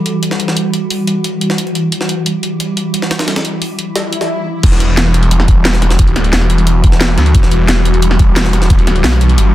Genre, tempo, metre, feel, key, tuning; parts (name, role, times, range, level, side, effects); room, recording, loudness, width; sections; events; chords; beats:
dark technical drum and bass; 177 BPM; 4/4; straight; E minor; A4 = 440 Hz
swarming drone; sustained chords; 0.0-9.5 s; E3 to F#4; -17 LUFS; equal; built-in reverb, sidechain pumping
drum and bass drum kit; drums; 0.1-9.4 s; crash cymbal, hi-hat, snare drum; -17 LUFS; equal
jungle sampler-style drum kit; drums; 0.1-9.5 s; hi-hat, snare drum; -22 LUFS; equal; high-pass filter on hats, high-pass filter on snare, high-pass filter on room
swell; sound effects; 4.1-4.6 s; -22 LUFS; left 3 dB
snarling distorted saw bass; bass; 4.6-9.5 s; E1 to D2; -12 LUFS; equal; distortion, overdrive, sidechain pumping
electronic kick drum; drums; 4.6-8.8 s; -9 LUFS; equal
little or no reverb; dense, heavily limited modern master; -10 LUFS; side -14 dB against mid
0.0-4.6 A section; 4.6-9.5 B section
swell 4.1-4.6; break 4.3-4.6; drop 4.6-9.5
0.0 Emadd9
0.23 | 0.57 0.91 1.24 1.58 | 1.92 2.26 2.60 2.94 | 3.28 3.62 3.96 4.29 | 4.63 4.97 5.31 5.65 | 5.99 6.33 6.67 7.01 | 7.35 7.68 8.02 8.36 | 8.70 9.04 9.38